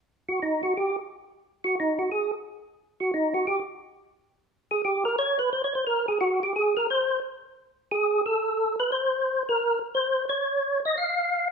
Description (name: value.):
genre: jazz.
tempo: 176 BPM.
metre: 4/4.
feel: swing 64% on 8ths.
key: unclear.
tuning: A4 = 441 Hz.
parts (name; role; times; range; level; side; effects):
percussive tonewheel organ; solo; 0.3-11.5 s; Eb4 to F5; -24 LUFS; equal; slow rotary speaker, chorus vibrato.
room: moderate large studio reverb, RT60 1.2 s.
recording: band playing live in one room.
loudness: -24 LUFS.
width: side -5 dB against mid.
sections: 0.0-11.5 A section.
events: tonewheel organ solo 0.0-11.5.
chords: none.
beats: | 0.05 0.39 0.73 1.07 | 1.41 1.75 2.09 2.43 | 2.77 3.11 3.45 3.79 | 4.13 4.47 4.81 5.15 | 5.49 5.83 6.17 6.51 | 6.85 7.19 7.54 7.88 | 8.22 8.56 8.90 9.24 | 9.58 9.92 10.26 10.61 | 10.95 11.29.